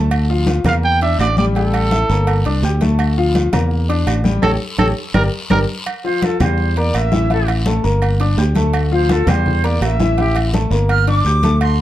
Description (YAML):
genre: latin, salsa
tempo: 167 BPM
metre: 4/4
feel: straight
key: D minor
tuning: A4 = 444 Hz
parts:
  - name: clear baby grand piano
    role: accompaniment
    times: 0.0-11.7 s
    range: E3 to G6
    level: -20 LUFS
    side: left 3 dB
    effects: none
  - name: fingered electric bass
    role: bass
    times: 0.0-11.8 s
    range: G1 to E2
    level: -16 LUFS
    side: equal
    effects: none
  - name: agogo bells and timbales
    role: percussion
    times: 0.1-11.8 s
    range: none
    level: -26 LUFS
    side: right 6 dB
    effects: none
  - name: claves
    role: percussion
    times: 0.1-11.8 s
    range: none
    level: -31 LUFS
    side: right 5 dB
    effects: none
  - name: congas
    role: percussion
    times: 0.1-11.8 s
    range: none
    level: -21 LUFS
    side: left 1 dB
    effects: none
  - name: guiro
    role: percussion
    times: 0.1-11.8 s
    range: none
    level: -32 LUFS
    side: left 3 dB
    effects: none
  - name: clear trumpet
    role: melody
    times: 0.7-5.6 s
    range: A4 to G5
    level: -20 LUFS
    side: right 2 dB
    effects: plate reverb
  - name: bright reedy silver concert flute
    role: melody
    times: 6.0-11.8 s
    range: G4 to F6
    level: -21 LUFS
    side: right 2 dB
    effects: plate reverb
room: light reverb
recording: dark, warm production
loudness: -14 LUFS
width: side -13 dB against mid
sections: 0.0-5.9 A section; 5.9-11.8 B section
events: band accent 4.4-5.9; drum fill 4.8-5.9; flute solo 5.9-11.8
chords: 0.1 Dm; 0.8 Em7b5; 1.6 A5; 2.3 Gm; 3.0 Dm; 3.7 Em7b5; 4.4 A7; 5.1 Gm; 5.9 Fmaj9; 6.6 Edim; 7.3 A5; 8.0 Gm; 8.7 Dm; 9.5 Edim; 10.2 A5; 10.9 Gm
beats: | 0.11 0.47 0.83 1.19 | 1.55 1.91 2.27 2.63 | 2.99 3.35 3.71 4.07 | 4.43 4.79 5.15 5.51 | 5.87 6.22 6.58 6.94 | 7.30 7.66 8.02 8.38 | 8.74 9.10 9.46 9.82 | 10.18 10.54 10.89 11.25 | 11.61